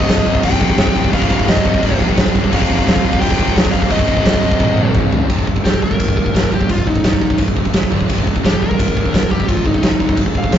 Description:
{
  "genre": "heavy metal",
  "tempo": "172 BPM",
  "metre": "4/4",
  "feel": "straight",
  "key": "C minor",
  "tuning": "A4 = 441 Hz",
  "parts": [
    { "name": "high-gain lead guitar", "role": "melody", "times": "0.0-10.6 s", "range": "Eb4 to G5", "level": "-20 LUFS", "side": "left 1 dB", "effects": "distortion" },
    { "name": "heavy high-gain guitar", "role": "riff", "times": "0.0-10.6 s", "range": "C2 to Bb3", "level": "-24 LUFS", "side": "right 4 dB", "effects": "distortion" },
    { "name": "raw garage guitar", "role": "riff", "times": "0.0-5.3 s", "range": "C2 to F3", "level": "-24 LUFS", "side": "equal", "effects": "overdrive" },
    { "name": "scooped high-gain guitar", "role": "riff", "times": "0.0-10.6 s", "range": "C2 to Bb3", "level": "-26 LUFS", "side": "left 4 dB", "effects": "none" },
    { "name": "overdriven fingered electric bass", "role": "bass", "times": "0.0-10.6 s", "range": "C1 to Bb1", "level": "-22 LUFS", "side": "equal", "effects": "none" },
    { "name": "big rock drum kit", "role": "drums", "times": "0.0-10.6 s", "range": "crash cymbal, kick drum, ride cymbal, snare drum, toms", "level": "-14 LUFS", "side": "equal", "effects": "none" }
  ],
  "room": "light reverb",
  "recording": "rough rehearsal-room recording, tube saturation, nothing above 7.6 kHz",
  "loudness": "-12 LUFS",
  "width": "side -10 dB against mid",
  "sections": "0.0-5.3 A section; 5.3-10.6 B section",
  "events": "drum fill 4.6-5.3; lead electric guitar solo 5.3-10.6",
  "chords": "0.0 Cm; 2.5 F5; 3.9 Cm; 5.3 C5; 7.9 G5; 8.1 Cm",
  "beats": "0.08 0.43 0.78 | 1.12 1.47 1.82 2.17 | 2.51 2.86 3.21 3.55 | 3.90 4.25 4.59 4.94 | 5.29 5.64 5.99 6.34 | 6.69 7.04 7.38 7.73 | 8.08 8.43 8.78 9.13 | 9.48 9.83 10.18 10.53"
}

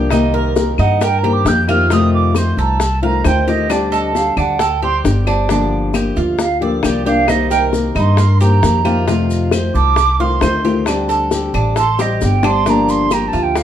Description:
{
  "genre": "latin, Cuban son and guajira",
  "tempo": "134 BPM",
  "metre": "4/4",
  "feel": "straight",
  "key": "G minor",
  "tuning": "A4 = 440 Hz",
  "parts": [
    { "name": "flamenco guitar", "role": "accompaniment", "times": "0.0-13.6 s", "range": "C3 to G4", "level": "-18 LUFS", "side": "left 4 dB", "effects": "none" },
    { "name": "Cuban tres", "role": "arpeggios", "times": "0.0-13.6 s", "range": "D4 to F5", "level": "-20 LUFS", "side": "right 4 dB", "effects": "none" },
    { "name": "upright bass", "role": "bass", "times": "0.0-13.6 s", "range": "G1 to G2", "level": "-17 LUFS", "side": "equal", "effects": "none" },
    { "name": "bongos", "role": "percussion", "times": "0.1-13.6 s", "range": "none", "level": "-21 LUFS", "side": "left 6 dB", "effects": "none" },
    { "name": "claves", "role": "percussion", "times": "0.1-13.3 s", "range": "none", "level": "-30 LUFS", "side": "left 9 dB", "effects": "none" },
    { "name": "maracas", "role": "percussion", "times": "0.1-13.6 s", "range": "none", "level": "-32 LUFS", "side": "left 4 dB", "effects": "none" },
    { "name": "concert flute", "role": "melody", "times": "0.8-13.6 s", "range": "A4 to G6", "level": "-18 LUFS", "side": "right 6 dB", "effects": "plate reverb" }
  ],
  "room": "moderate studio reverb, RT60 0.8 s",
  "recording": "dark, warm production",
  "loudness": "-12 LUFS",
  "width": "side -10 dB against mid",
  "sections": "0.0-13.6 A section",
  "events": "flute solo 0.0-13.6; drum fill 12.0-12.7",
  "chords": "0.1 Cm7; 1.9 F7; 3.7 D7sus4; 5.5 Gm7; 7.3 Cm7; 9.1 F7; 10.9 D7sus4; 12.7 Gm7",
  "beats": "| 0.11 0.56 1.01 1.46 | 1.91 2.36 2.80 3.25 | 3.70 4.15 4.60 5.04 | 5.49 5.94 6.39 6.84 | 7.28 7.73 8.18 8.63 | 9.08 9.53 9.97 10.42 | 10.87 11.32 11.77 12.21 | 12.66 13.11 13.56"
}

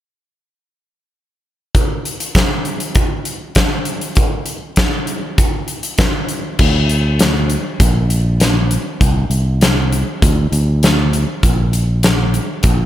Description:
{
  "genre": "quiet-loud alternative rock",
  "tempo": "99 BPM",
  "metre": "4/4",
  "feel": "straight",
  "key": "unclear",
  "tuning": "A4 = 441 Hz",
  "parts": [
    { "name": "huge arena drum kit", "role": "drums", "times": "1.7-12.8 s", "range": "crash cymbal, hi-hat, kick drum, snare drum", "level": "-15 LUFS", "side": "equal", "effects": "none" },
    { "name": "fingered electric bass", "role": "bass", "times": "6.6-12.9 s", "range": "Bb1 to D2", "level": "-15 LUFS", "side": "equal", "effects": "none" }
  ],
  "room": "little or no reverb",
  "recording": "none",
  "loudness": "-13 LUFS",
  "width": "side -12 dB against mid",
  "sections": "1.8-6.6 A section; 6.6-12.9 B section",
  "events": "none",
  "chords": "none",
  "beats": "| 1.75 2.36 2.96 3.57 | 4.17 4.78 5.38 5.98 | 6.59 7.19 7.80 8.40 | 9.01 9.61 10.21 10.82 | 11.42 12.02 12.63"
}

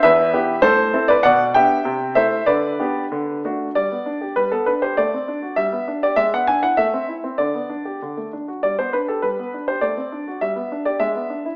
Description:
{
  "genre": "classical-period piano sonatina",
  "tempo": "92-104 BPM",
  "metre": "2/4",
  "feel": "rubato",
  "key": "G major",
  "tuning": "A4 = 440 Hz",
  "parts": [
    { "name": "warm grand piano", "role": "solo", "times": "0.0-11.6 s", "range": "E2 to G#5", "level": "-20 LUFS", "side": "equal", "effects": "none" }
  ],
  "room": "moderate recital hall reverb, RT60 1.4 s",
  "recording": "AM radio sound",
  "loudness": "-20 LUFS",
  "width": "mono",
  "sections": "0.0-3.8 A section; 3.8-11.6 B section",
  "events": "none",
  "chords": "0.0 Em; 0.6 Am; 1.2 G/B; 1.8 Am7/C; 2.5 G/D; 3.1 D; 3.8 G; 5.0 D7/A; 5.6 G; 6.2 E7/G#; 6.8 Am; 7.4 G/D; 8.0 D; 8.6 G; 9.8 D7/A; 10.4 G; 11.0 E7/G#",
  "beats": "| 0.03 0.63 | 1.24 1.85 | 2.48 3.12 | 3.76 4.38 | 4.98 5.58 | 6.17 6.77 | 7.37 8.00 | 8.62 9.23 | 9.83 10.41 | 10.99"
}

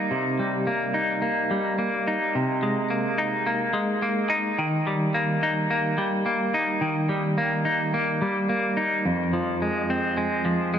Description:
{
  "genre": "rock",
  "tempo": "107 BPM",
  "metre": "4/4",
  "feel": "straight",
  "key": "unclear",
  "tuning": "A4 = 441 Hz",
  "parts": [
    { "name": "semi-hollow electric guitar", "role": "solo", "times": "0.0-10.8 s", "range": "F2 to Eb4", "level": "-22 LUFS", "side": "equal", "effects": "harmonic tremolo, ping-pong delay" }
  ],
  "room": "wet huge ambient reverb, RT60 7.0 s",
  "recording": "dreamy mix soaked in reverb",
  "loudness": "-22 LUFS",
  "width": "side -8 dB against mid",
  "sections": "0.0-4.6 A section; 4.6-10.8 B section",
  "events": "none",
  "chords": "0.1 Cm7; 2.4 Abadd9/C; 4.6 Eb; 9.1 Fm",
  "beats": "| 0.12 0.68 1.24 1.80 | 2.35 2.91 3.47 4.03 | 4.59 5.15 5.71 6.27 | 6.82 7.38 7.94 8.50 | 9.06 9.62 10.18 10.73"
}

